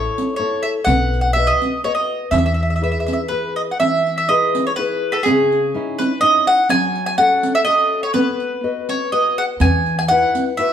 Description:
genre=italian folk, Italian serenade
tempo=124 BPM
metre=3/4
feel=swing 54% on 8ths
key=E major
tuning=A4 = 440 Hz
part: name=mandolin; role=melody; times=0.0-10.7 s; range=G#4 to G#5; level=-17 LUFS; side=right 1 dB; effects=none
part: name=nylon-string guitar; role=accompaniment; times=0.0-10.7 s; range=C#3 to D#5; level=-23 LUFS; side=left 4 dB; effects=none
part: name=upright bass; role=bass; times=0.0-3.0, 9.6-10.2 s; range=B1 to E2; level=-20 LUFS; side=equal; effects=none
part: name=riq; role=percussion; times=0.2-10.6 s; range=none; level=-23 LUFS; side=right 3 dB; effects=none
room=wet large studio reverb, RT60 1.2 s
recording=band playing live in one room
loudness=-15 LUFS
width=side -9 dB against mid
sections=0.0-3.8 A section; 3.8-10.7 A section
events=none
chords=0.0 A; 0.9 B; 2.3 E; 5.3 C#madd9; 6.7 F#m; 8.1 B; 9.6 Esus2

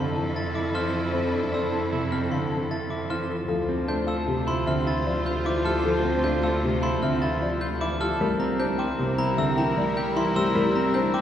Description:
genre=classical, minimalist pattern music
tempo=153 BPM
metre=6/4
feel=straight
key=D minor from 3.5 s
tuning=A4 = 439 Hz
part: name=buzzing marimba with soft mallets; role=melody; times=0.0-11.2 s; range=G4 to A5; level=-31 LUFS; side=left 3 dB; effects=none
part: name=dark clarinet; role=second line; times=0.0-11.2 s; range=A4 to C5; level=-35 LUFS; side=right 1 dB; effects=none
part: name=dark grand piano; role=accompaniment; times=0.0-11.2 s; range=C3 to C4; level=-29 LUFS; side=equal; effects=none
part: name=rich studio string section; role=sustained chords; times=0.0-11.2 s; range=E4 to C5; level=-32 LUFS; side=left 1 dB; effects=none
part: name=electric guitar at the edge of break-up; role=arpeggios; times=0.0-11.2 s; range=C4 to C5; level=-30 LUFS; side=right 2 dB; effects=none
part: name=glockenspiel with hard plastic mallets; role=arpeggios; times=0.0-11.2 s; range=Bb5 to A6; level=-32 LUFS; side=left 4 dB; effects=none
part: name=clear cello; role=bass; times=0.0-11.2 s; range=C2 to F2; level=-30 LUFS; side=right 1 dB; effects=none
room=wet cathedral reverb, RT60 5.4 s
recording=heard from further back in the room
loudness=-22 LUFS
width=side -10 dB against mid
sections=0.0-3.5 A section; 3.5-11.2 B section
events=none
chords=0.0 Fmaj7; 3.5 Dm9; 8.2 C7

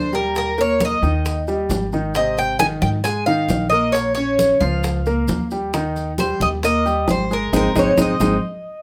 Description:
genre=latin, Cuban son and guajira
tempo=134 BPM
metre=4/4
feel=straight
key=Ab major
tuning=A4 = 440 Hz
part: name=Cuban tres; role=melody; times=0.0-8.8 s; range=Bb4 to Ab5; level=-22 LUFS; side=equal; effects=none
part: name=warm baby grand piano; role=arpeggios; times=0.0-8.3 s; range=C3 to Db5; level=-24 LUFS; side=equal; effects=none
part: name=upright bass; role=bass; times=0.0-8.4 s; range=Ab1 to Ab2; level=-27 LUFS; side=equal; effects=none
part: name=congas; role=percussion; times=0.1-8.3 s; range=none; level=-28 LUFS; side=equal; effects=none
part: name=maracas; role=percussion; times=0.1-8.3 s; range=none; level=-38 LUFS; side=equal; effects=none
part: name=bongos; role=percussion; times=0.4-8.3 s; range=none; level=-32 LUFS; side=equal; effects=none
room=light reverb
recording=close, detailed microphones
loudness=-19 LUFS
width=mono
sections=0.0-8.8 A section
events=band accent 7.5-8.8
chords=0.4 Eb; 2.1 Ab; 3.9 Bbm; 5.7 Eb; 7.5 Ab

